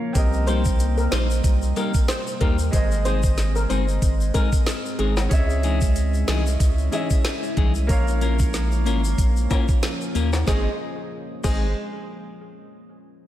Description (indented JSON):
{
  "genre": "dancehall",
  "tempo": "93 BPM",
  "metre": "4/4",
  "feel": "swing 56% on 16ths",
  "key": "Ab major",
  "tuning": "A4 = 439 Hz",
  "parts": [
    { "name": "bright grand piano", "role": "accompaniment", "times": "0.0-11.7 s", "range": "Ab3 to F5", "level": "-31 LUFS", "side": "right 2 dB", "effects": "none" },
    { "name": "deep dark ambient pad", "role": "sustained chords", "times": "0.0-10.8 s", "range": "C3 to Fb4", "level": "-31 LUFS", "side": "equal", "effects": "chorus, built-in reverb, sidechain pumping" },
    { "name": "saturated sub bass", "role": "bass", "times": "0.2-11.7 s", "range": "G1 to Eb2", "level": "-22 LUFS", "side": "equal", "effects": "none" },
    { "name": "island pop drum kit", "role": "drums", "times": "0.2-11.6 s", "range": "crash cymbal, hi-hat, kick drum, snare drum", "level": "-22 LUFS", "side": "equal", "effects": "none" },
    { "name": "tube shaker and timbales", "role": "percussion", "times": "0.2-11.7 s", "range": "none", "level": "-35 LUFS", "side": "left 6 dB", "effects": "none" },
    { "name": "steel pan", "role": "melody", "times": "0.5-5.1, 10.5-11.7 s", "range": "Ab4 to C5", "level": "-31 LUFS", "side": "equal", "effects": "tape echo" },
    { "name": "clean electric guitar", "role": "arpeggios", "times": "0.5-11.7 s", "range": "Fb3 to Bb4", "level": "-30 LUFS", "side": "left 6 dB", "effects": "none" }
  ],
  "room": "light reverb, digital ambience",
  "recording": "none",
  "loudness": "-19 LUFS",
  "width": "side -13 dB against mid",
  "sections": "0.0-10.5 A section; 10.5-13.1 B section",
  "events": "break 0.0",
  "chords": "0.2 Cm7; 2.7 Ab; 5.3 Dbmadd9; 7.9 Bbm; 10.5 Ab"
}